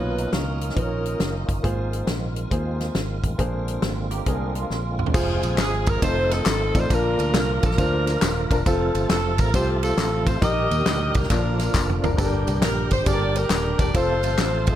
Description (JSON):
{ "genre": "uptempo gospel", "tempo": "137 BPM", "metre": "4/4", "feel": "swing 65% on 8ths", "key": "unclear", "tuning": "A4 = 438 Hz", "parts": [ { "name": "warm saxophone section", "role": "melody", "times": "0.0-1.6, 5.6-14.8 s", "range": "C4 to Eb5", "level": "-26 LUFS", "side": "equal", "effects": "none" }, { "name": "dark grand piano", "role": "accompaniment", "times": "0.0-14.4 s", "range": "G2 to D5", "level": "-28 LUFS", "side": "left 2 dB", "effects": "none" }, { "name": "tonewheel organ", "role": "sustained chords", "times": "0.0-14.8 s", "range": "Bb2 to Bb4", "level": "-29 LUFS", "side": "right 3 dB", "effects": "slow rotary speaker, chorus vibrato" }, { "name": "fingered electric bass", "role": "bass", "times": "0.0-14.8 s", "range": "Eb1 to Eb2", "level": "-26 LUFS", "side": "equal", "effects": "none" }, { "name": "natural country drum kit", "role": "drums", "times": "0.2-14.7 s", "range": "crash cymbal, hi-hat, kick drum, ride cymbal, snare drum, toms", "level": "-25 LUFS", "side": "equal", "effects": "none" }, { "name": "clean electric guitar", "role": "second line", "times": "4.1-5.1 s", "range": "Ab3 to Ab4", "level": "-34 LUFS", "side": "right 7 dB", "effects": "analog chorus" }, { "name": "tambourine and handclaps", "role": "percussion", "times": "5.2-14.7 s", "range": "none", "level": "-32 LUFS", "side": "left 4 dB", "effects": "none" } ], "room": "light reverb", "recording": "none", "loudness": "-20 LUFS", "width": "side -11 dB against mid", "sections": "0.0-5.1 A section; 5.1-14.8 B section", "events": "drum fill 4.7-5.1, 11.7-12.2", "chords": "0.0 Bmaj9#11; 1.6 Ab69; 3.4 Bb9; 5.1 Fm; 6.0 F7; 6.9 Bb; 8.7 F; 10.4 Eb/Bb; 11.3 Bb; 12.2 Gm; 13.9 F" }